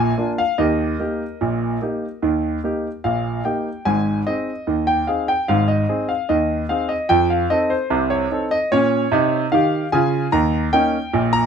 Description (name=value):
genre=ragtime piano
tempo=74 BPM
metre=2/4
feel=straight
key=Eb major, Ab major from 3.9 s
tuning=A4 = 440 Hz
part: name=clear concert grand piano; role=solo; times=0.0-11.5 s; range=Ab1 to Bb5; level=-17 LUFS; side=equal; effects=none
room=moderate club reverb, RT60 0.6 s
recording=minimal, uncompressed stereo recording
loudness=-17 LUFS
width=side -7 dB against mid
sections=0.0-3.9 A section; 3.9-11.5 B section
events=none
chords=0.0 Bb7; 0.6 Eb; 3.9 Ab; 7.1 F7; 8.7 Bbm; 10.3 Eb5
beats=| 0.59 1.41 | 2.23 3.04 | 3.86 4.67 | 5.48 6.29 | 7.10 7.91 | 8.71 9.52 | 10.33 11.13